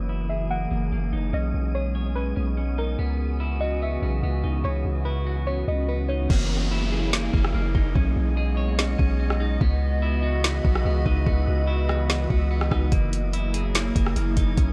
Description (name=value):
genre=hip hop, atmospheric cloud-rap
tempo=145 BPM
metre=4/4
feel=half-time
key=unclear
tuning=A4 = 437 Hz
part: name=warbly tape-like pad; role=sustained chords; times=0.0-14.7 s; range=C#3 to D#5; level=-33 LUFS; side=equal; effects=chorus, built-in reverb, sidechain pumping, low-pass filter
part: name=clean electric guitar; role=arpeggios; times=0.0-14.7 s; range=A#3 to C#5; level=-35 LUFS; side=equal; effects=low-pass filter, tape echo
part: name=long sustained 808-style bass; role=bass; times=0.0-14.7 s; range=F#1 to C#2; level=-27 LUFS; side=equal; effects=none
part: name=wind-like tuned noise texture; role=texture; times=0.0-14.7 s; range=A#3 to D#6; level=-42 LUFS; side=equal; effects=built-in reverb
part: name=soft round pluck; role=melody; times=0.3-6.3 s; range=A#4 to F#5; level=-36 LUFS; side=equal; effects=chorus, low-pass filter, tape echo
part: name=smooth R&B drum kit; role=drums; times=6.3-14.7 s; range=crash cymbal, hi-hat, kick drum, rim click, snare drum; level=-27 LUFS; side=equal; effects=none
part: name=downlifter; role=sound effects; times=6.3-9.6 s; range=none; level=-38 LUFS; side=equal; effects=none
room=little or no reverb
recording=none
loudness=-24 LUFS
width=mono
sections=0.0-6.3 A section; 6.3-14.7 B section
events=hi-hats muted 6.3-12.9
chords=0.0 F#13; 1.3 B69; 3.0 C#m11; 6.3 F#13; 8.0 B69; 9.6 C#m11; 12.9 F#13